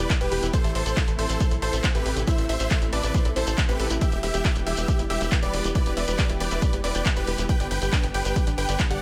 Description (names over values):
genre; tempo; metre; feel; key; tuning
uplifting trance; 138 BPM; 4/4; straight; E minor; A4 = 440 Hz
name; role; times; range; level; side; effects
big supersaw lead; melody; 0.0-9.0 s; G4 to G5; -33 LUFS; equal; sidechain pumping, digital delay
unison pluck; second line; 0.0-9.0 s; B4 to G5; -38 LUFS; equal; none
unison pluck; arpeggios; 0.0-9.0 s; D4 to A5; -37 LUFS; equal; sidechain pumping, digital delay
tight sequencer bass; bass; 0.0-9.0 s; E1 to B1; -31 LUFS; equal; sidechain pumping
electronic kick drum; drums; 0.1-8.9 s; none; -26 LUFS; equal; none
punchy analog drum machine; drums; 0.1-9.0 s; handclaps, hi-hat; -33 LUFS; equal; none
shekere; percussion; 0.1-9.0 s; none; -39 LUFS; equal; none
room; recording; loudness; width
digital ambience; none; -24 LUFS; mono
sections
0.0-9.0 A section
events
none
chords
0.0 Em; 0.5 Am; 4.0 Em; 7.5 G